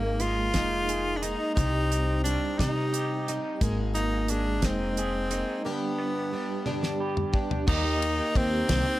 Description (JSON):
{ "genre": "folk rock and heartland rock", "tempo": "59 BPM (dotted quarters)", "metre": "6/8", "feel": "straight", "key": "unclear", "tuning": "A4 = 440 Hz", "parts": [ { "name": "clear tenor saxophone", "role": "melody", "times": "0.0-9.0 s", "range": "Bb3 to F4", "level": "-30 LUFS", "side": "equal", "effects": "tape echo" }, { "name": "picked plugged-in twelve-string acoustic guitar", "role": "accompaniment", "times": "0.0-9.0 s", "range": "G2 to Ab4", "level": "-35 LUFS", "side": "left 3 dB", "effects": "none" }, { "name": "reed electric piano", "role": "accompaniment", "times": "0.0-9.0 s", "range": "Bb3 to B5", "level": "-43 LUFS", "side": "right 6 dB", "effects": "none" }, { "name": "electric guitar through a small old amp", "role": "riff", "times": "0.0-9.0 s", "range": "G2 to Ab4", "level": "-33 LUFS", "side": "right 3 dB", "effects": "harmonic tremolo" }, { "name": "upright bass", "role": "bass", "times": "0.0-8.8 s", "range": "F1 to C3", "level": "-30 LUFS", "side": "equal", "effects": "none" }, { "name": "damped 70s drum kit", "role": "drums", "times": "0.2-8.8 s", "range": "crash cymbal, hi-hat, kick drum, ride cymbal, snare drum, toms", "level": "-29 LUFS", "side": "equal", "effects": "none" } ], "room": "little or no reverb", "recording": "none", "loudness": "-25 LUFS", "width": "side -16 dB against mid", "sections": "0.0-7.7 A section; 7.7-9.0 B section", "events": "drum fill 6.7-7.7; reed electric piano fill 6.7-7.7", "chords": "0.0 Absus2; 1.6 Cm; 3.6 Absus2; 5.7 G; 7.7 Eb", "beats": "0.55 | 1.57 2.60 | 3.62 4.63 | 5.65 6.67 | 7.68 8.69" }